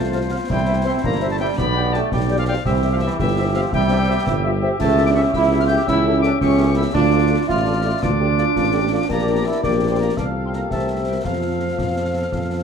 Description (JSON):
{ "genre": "military-style march for wind band", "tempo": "112 BPM (dotted quarters)", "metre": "6/8", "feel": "straight", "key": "unclear", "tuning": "A4 = 440 Hz", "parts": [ { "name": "bright piccolo", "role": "second line", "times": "0.0-12.6 s", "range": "E5 to G6", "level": "-29 LUFS", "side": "left 7 dB", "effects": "none" }, { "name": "clear euphonium", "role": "second line", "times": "0.0-12.6 s", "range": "Bb3 to G4", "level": "-26 LUFS", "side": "right 2 dB", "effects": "none" }, { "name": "warm woodwind section", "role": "second line", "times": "0.0-12.6 s", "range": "E4 to F5", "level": "-28 LUFS", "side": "left 2 dB", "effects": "none" }, { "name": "warm trombone section", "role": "sustained chords", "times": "0.0-12.6 s", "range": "E3 to G4", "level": "-23 LUFS", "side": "right 4 dB", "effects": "none" }, { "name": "mellow tuba", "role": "bass", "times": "0.0-12.6 s", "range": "G1 to F2", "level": "-20 LUFS", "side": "right 2 dB", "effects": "none" }, { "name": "warm cornet", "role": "melody", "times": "0.1-12.6 s", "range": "D5 to G5", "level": "-31 LUFS", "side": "left 2 dB", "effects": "none" }, { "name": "mellow French horn section", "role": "accompaniment", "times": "0.1-12.6 s", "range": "E4 to D5", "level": "-27 LUFS", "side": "left 7 dB", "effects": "none" }, { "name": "concert snare drum, clash cymbals and concert bass drum", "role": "drums", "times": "0.5-12.6 s", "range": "none", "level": "-28 LUFS", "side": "left 2 dB", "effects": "none" } ], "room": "moderate large studio reverb, RT60 1.2 s", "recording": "dark, warm production", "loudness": "-16 LUFS", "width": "side -7 dB against mid", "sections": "0.0-12.6 A section", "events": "none", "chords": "0.5 C; 1.6 G/B; 2.6 C; 4.8 A7/C#; 6.9 Dm; 9.1 Gm/Bb; 10.2 F/C; 10.7 C7; 11.2 F", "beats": "| 0.49 1.03 | 1.57 2.11 | 2.65 3.18 | 3.72 4.26 | 4.80 5.33 | 5.87 6.41 | 6.95 7.49 | 8.02 8.56 | 9.10 9.63 | 10.17 10.71 | 11.25 11.79 | 12.32" }